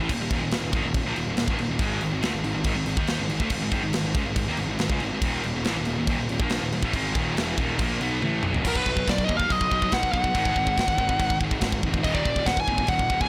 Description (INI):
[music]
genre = heavy metal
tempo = 140 BPM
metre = 4/4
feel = straight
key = Eb harmonic minor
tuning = A4 = 442 Hz
[part]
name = heavy high-gain guitar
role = riff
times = 0.0-13.3 s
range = Eb2 to Eb4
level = -32 LUFS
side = equal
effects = distortion
[part]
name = sludgy distorted guitar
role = riff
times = 0.0-13.3 s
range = Eb2 to Eb4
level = -35 LUFS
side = equal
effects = none
[part]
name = fuzz picked electric bass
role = bass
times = 0.0-13.3 s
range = Eb1 to Eb2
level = -32 LUFS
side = equal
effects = overdrive
[part]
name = tight metal drum kit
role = drums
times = 0.1-13.3 s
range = crash cymbal, kick drum, snare drum, toms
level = -30 LUFS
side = equal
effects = none
[part]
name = high-gain lead guitar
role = melody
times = 8.7-13.3 s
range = Bb4 to Ab5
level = -27 LUFS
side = equal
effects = distortion, delay
[sound]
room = small room ambience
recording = blown-out, overdriven recording, overdrive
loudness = -25 LUFS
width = mono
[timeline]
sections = 0.0-8.7 A section; 8.7-13.3 B section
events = drum fill 8.2-8.7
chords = 0.0 Eb5; 1.8 Ab5; 5.2 Ebm; 8.7 B; 10.4 Ab5; 12.1 Ebm